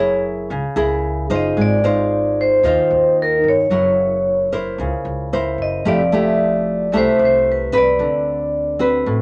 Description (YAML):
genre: bossa nova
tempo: 112 BPM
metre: 4/4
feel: straight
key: unclear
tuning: A4 = 440 Hz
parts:
  - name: vibraphone with medium mallets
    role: melody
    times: 0.0-8.8 s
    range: Bb4 to Eb5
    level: -19 LUFS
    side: equal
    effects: none
  - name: nylon-string guitar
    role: accompaniment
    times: 0.0-9.2 s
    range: A2 to C5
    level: -21 LUFS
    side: equal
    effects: none
  - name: upright bass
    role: bass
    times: 0.0-9.2 s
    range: F1 to Eb2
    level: -29 LUFS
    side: equal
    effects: none
room: moderate small room reverb, RT60 0.5 s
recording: none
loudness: -17 LUFS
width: mono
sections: 0.0-9.2 A section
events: none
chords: 0.0 F#9; 1.6 Ab6; 3.7 F#7#11; 5.9 Fmaj9; 8.0 D6